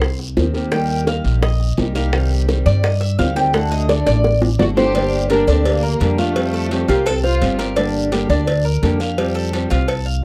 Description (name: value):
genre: latin, Cuban son and guajira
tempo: 170 BPM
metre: 4/4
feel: straight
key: G minor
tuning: A4 = 440 Hz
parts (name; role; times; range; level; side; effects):
- fingerpicked old ladder-braced acoustic guitar; accompaniment; 0.0-9.9 s; C3 to G4; -24 LUFS; equal; none
- Cuban tres; arpeggios; 0.0-10.2 s; D4 to G5; -25 LUFS; equal; none
- upright bass; bass; 0.0-10.2 s; G1 to G2; -21 LUFS; equal; none
- bongos and cowbell; percussion; 0.0-10.1 s; none; -25 LUFS; equal; none
- guiro; percussion; 0.0-10.2 s; none; -37 LUFS; equal; none
- nylon-string guitar; melody; 4.6-7.6 s; F4 to D5; -22 LUFS; equal; none
- warm studio violin section; second line; 4.6-7.6 s; A3 to G4; -28 LUFS; equal; none
room: light reverb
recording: dry, close 1970s-style studio recording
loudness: -17 LUFS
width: mono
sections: 0.0-4.9 A section; 4.9-10.2 B section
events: Cuban tres solo 0.0-4.9; drum fill 4.1-4.9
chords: 0.0 Cm7; 0.7 Eb; 2.1 Cm; 3.5 D; 4.9 Gm; 6.4 Fadd9; 7.8 Gm; 9.2 Fadd9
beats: 0.02 0.37 | 0.72 1.07 1.43 1.78 | 2.13 2.48 2.84 3.19 | 3.54 3.89 4.25 4.60 | 4.95 5.30 5.65 6.00 | 6.36 6.71 7.06 7.41 | 7.77 8.12 8.47 8.82 | 9.18 9.53 9.88 10.23